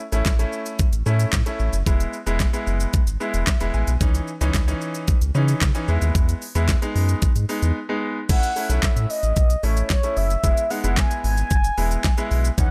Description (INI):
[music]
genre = dance-pop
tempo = 112 BPM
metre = 4/4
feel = straight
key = E major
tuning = A4 = 440 Hz
[part]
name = clear concert grand piano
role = accompaniment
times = 0.1-12.7 s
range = E3 to G#5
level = -30 LUFS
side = equal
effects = sidechain pumping
[part]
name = round analog bass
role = bass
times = 0.1-12.7 s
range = E1 to C#3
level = -24 LUFS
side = equal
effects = sidechain pumping
[part]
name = pop drum kit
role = drums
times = 0.1-12.7 s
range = crash cymbal, handclaps, hi-hat, kick drum, shaker, snare drum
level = -24 LUFS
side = equal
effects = none
[part]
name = mellow horn-like synth lead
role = melody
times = 8.3-12.7 s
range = C#5 to G#5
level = -28 LUFS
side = equal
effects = chorus, phaser
[sound]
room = little or no reverb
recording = none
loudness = -21 LUFS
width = mono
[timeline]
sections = 0.0-8.3 A section; 8.3-12.7 B section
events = grand piano fill 3.2-4.0; break 7.8-8.3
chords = 0.0 A; 1.9 E; 4.0 C#madd9; 5.9 E; 8.3 A; 10.4 E